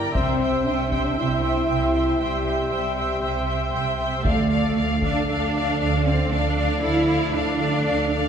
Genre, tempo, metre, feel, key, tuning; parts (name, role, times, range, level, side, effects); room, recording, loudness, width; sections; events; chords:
cinematic, epic orchestral film score; 117 BPM; 4/4; straight; D minor; A4 = 441 Hz
warm symphonic violin section; second line; 0.0-8.3 s; D5 to Bb5; -30 LUFS; left 2 dB
warm symphonic viola section; accompaniment; 0.0-8.3 s; A4 to E5; -28 LUFS; right 1 dB
dark symphonic double bass section; bass; 0.0-8.3 s; C2 to D2; -26 LUFS; right 2 dB
rich symphonic cello section; bass; 0.0-8.3 s; C3 to E4; -26 LUFS; right 3 dB
mellow French horn section; sustained chords; 0.1-8.3 s; F3 to E4; -28 LUFS; left 2 dB
solo taiko drums; drums; 0.1-1.2, 4.2-5.3 s; -28 LUFS; equal
warm symphonic violin section; melody; 4.3-8.3 s; F5; -28 LUFS; left 6 dB
wet recital hall reverb, RT60 1.6 s; recorded in a church or concert hall; -20 LUFS; side -7 dB against mid
0.0-4.3 A section; 4.3-8.3 A section
0.2 C; 4.3 Dm